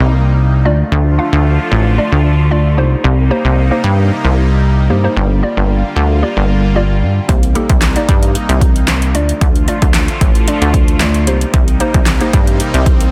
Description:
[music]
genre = dance-pop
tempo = 113 BPM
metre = 4/4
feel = straight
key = C dorian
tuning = A4 = 440 Hz
[part]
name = hollow square pluck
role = accompaniment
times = 0.0-13.0 s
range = A3 to F5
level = -22 LUFS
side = equal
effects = chorus, sidechain pumping
[part]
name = supersaw pad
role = sustained chords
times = 0.0-13.1 s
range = C3 to F4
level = -24 LUFS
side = equal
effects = phaser, sidechain pumping
[part]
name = plucky analog bass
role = bass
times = 0.0-13.1 s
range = G1 to G2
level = -15 LUFS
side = equal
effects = sidechain pumping
[part]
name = deep house drum kit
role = drums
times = 7.3-13.1 s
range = handclaps, hi-hat, kick drum, snare drum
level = -14 LUFS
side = equal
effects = overdrive
[part]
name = swell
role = sound effects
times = 12.6-13.1 s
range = none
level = -31 LUFS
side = equal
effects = none
[sound]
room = light reverb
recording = dense, heavily limited modern master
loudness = -13 LUFS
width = mono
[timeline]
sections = 0.0-13.1 A section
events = none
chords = 0.0 Cm7; 0.7 Dm; 2.8 Cm7; 5.2 Gm7; 7.3 Cm7; 9.1 Dm; 11.3 Cm7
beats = 0.39 | 0.92 1.45 1.98 2.51 | 3.04 3.57 4.11 4.64 | 5.17 5.70 6.23 6.76 | 7.29 7.82 8.35 8.88 | 9.41 9.95 10.48 11.01 | 11.54 12.07 12.60

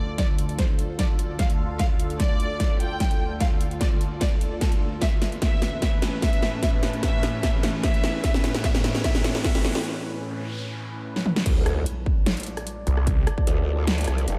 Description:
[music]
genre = heavy wobble dubstep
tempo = 149 BPM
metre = 4/4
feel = half-time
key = unclear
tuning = A4 = 440 Hz
[part]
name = warm symphonic violin section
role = melody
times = 0.0-9.5 s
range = A4 to G5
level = -35 LUFS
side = equal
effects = delay
[part]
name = evolving wavetable pad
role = sustained chords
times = 0.0-11.4 s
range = D2 to B4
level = -34 LUFS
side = equal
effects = phaser, built-in reverb, sidechain pumping
[part]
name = warbly tape-like pad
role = texture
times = 0.0-14.4 s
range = C#4 to A5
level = -42 LUFS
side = equal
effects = chorus, built-in reverb, sidechain pumping
[part]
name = big-room dance drum kit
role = drums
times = 0.2-14.4 s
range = crash cymbal, hi-hat, rim click, snare drum, toms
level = -30 LUFS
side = equal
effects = none
[part]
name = electronic kick drum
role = drums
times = 0.2-13.5 s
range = none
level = -26 LUFS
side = equal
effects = none
[part]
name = riser, noise sweep and impact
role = sound effects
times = 6.4-13.1 s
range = none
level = -41 LUFS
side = equal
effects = none
[part]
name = growl bass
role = bass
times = 11.5-14.4 s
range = F1 to D2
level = -26 LUFS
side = equal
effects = chorus, overdrive
[part]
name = snarling distorted saw bass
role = bass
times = 12.9-13.3 s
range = C2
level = -24 LUFS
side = equal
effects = overdrive
[sound]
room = moderate plate reverb, RT60 2.2 s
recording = dreamy mix soaked in reverb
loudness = -24 LUFS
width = mono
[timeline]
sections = 0.0-11.5 A section; 11.5-14.4 B section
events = build-up 0.0-11.5; drum fill 0.0-9.8, 11.2-11.5; break 9.8-11.5; noise sweep 9.8-11.5; drop 11.5-14.4; impact 11.5-13.1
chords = 0.0 Dm; 5.0 Aadd9; 11.5 Dm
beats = | 0.18 0.59 0.99 1.39 | 1.79 2.20 2.60 3.00 | 3.40 3.81 4.21 4.61 | 5.02 5.42 5.82 6.22 | 6.63 7.03 7.43 7.83 | 8.24 8.64 9.04 9.45 | 9.85 10.25 10.65 11.06 | 11.46 11.86 12.26 12.67 | 13.07 13.47 13.88 14.28

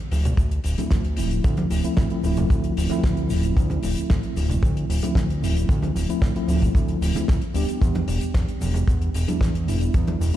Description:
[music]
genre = nu-disco, nu disco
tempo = 113 BPM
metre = 4/4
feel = straight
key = D dorian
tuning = A4 = 442 Hz
[part]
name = fat analog bass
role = bass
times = 0.1-10.4 s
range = D1 to E2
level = -24 LUFS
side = equal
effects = none
[part]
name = damped 70s drum kit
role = drums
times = 0.1-10.4 s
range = hi-hat, shaker, snare drum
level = -33 LUFS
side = left 1 dB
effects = small room ambience
[part]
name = congas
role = percussion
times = 0.1-10.2 s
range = none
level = -31 LUFS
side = right 2 dB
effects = none
[part]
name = kick drum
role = drums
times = 0.4-10.0 s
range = none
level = -21 LUFS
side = equal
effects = small room ambience
[part]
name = mellow tine electric piano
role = accompaniment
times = 0.8-10.4 s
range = F3 to G4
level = -27 LUFS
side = equal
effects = medium stereo tremolo, sidechain pumping, analog delay
[sound]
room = light reverb, small room reverb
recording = played on a big sound system in a bare room, large studio reverb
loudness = -20 LUFS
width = side -12 dB against mid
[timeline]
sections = 0.0-10.4 A section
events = none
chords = 0.0 Dm9; 7.8 Em7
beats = 0.38 0.91 | 1.44 1.97 2.50 3.04 | 3.57 4.10 4.63 5.16 | 5.69 6.22 6.75 7.28 | 7.81 8.35 8.88 9.41 | 9.94

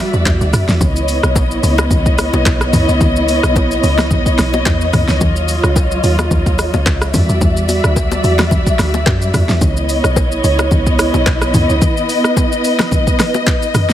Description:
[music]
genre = amapiano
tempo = 109 BPM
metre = 4/4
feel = swing 55% on 16ths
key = unclear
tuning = A4 = 440 Hz
[part]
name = dark studio string section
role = sustained chords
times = 0.0-13.9 s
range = F#3 to E5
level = -16 LUFS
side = equal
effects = sidechain pumping
[part]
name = deep log drum bass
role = bass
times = 0.1-11.8 s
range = B1 to F#2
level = -16 LUFS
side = equal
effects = none
[part]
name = deep house drum kit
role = drums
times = 0.1-13.9 s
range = handclaps, hi-hat, kick drum, rim click, shaker, snare drum, toms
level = -16 LUFS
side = equal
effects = none
[part]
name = congas and bongos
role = percussion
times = 0.8-13.9 s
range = none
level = -23 LUFS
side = left 4 dB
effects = none
[sound]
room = digital ambience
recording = heavily compressed radio sound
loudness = -11 LUFS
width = side -11 dB against mid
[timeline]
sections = 0.0-13.9 A section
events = none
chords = 0.0 Em9; 0.8 C#m9; 5.2 D#m9; 7.1 Em9; 9.6 C#m9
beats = 0.26 | 0.81 1.36 1.91 2.46 | 3.01 3.56 4.11 4.66 | 5.21 5.76 6.31 6.86 | 7.41 7.96 8.51 9.06 | 9.61 10.16 10.71 11.27 | 11.82 12.37 12.92 13.47

